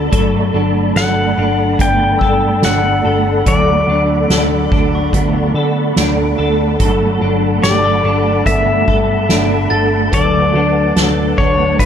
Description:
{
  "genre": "dream pop",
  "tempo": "72 BPM",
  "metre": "4/4",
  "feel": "straight",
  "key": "G major",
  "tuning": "A4 = 440 Hz",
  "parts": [
    { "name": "mellow electric guitar", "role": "accompaniment", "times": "0.0-11.9 s", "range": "D3 to B4", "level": "-21 LUFS", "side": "right 4 dB", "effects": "tremolo, ensemble chorus" },
    { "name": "mellow tonewheel organ", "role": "sustained chords", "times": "0.0-11.9 s", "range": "A4 to B5", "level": "-21 LUFS", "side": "equal", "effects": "chorus vibrato, fast rotary speaker" },
    { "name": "clean electric guitar", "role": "arpeggios", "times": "0.0-11.9 s", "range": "F#3 to A4", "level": "-18 LUFS", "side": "left 2 dB", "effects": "ensemble chorus, digital delay" },
    { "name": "vintage muted picked electric bass", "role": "bass", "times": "0.0-11.9 s", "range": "G1 to D3", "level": "-18 LUFS", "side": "equal", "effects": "none" },
    { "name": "soft-mallet drum kit", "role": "drums", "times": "0.1-11.9 s", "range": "hi-hat, kick drum, snare drum", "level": "-17 LUFS", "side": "equal", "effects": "none" },
    { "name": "pedal steel guitar", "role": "melody", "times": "1.0-11.9 s", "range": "B4 to G5", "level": "-17 LUFS", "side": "left 2 dB", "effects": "digital delay" },
    { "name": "glockenspiel with hard plastic mallets", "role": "texture", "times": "2.2-10.5 s", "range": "C#6 to A6", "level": "-27 LUFS", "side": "left 1 dB", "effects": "digital delay" }
  ],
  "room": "moderate huge ambient reverb, RT60 6.3 s",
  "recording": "none",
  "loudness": "-11 LUFS",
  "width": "side -8 dB against mid",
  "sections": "0.0-11.9 A section",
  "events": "none",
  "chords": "0.1 Gmaj9; 3.5 D6; 6.8 Gmaj9; 10.1 D6"
}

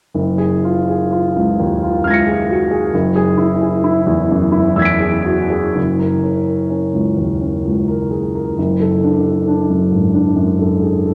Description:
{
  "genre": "classical, impressionist solo piano",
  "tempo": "64 BPM",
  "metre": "3/4",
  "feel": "uneven beats, rubato",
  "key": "unclear",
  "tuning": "A4 = 440 Hz",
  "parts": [
    { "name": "warm grand piano", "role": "solo", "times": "0.1-11.1 s", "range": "Gb1 to D7", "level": "-16 LUFS", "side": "equal", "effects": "none" }
  ],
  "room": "wet scoring stage reverb, RT60 1.9 s",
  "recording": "none",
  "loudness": "-16 LUFS",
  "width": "mono",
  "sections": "0.1-5.8 A section; 5.8-11.1 B section",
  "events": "none",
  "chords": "0.1 Gbmaj9; 2.9 E9/F#; 5.8 Gb6; 8.6 D/F#"
}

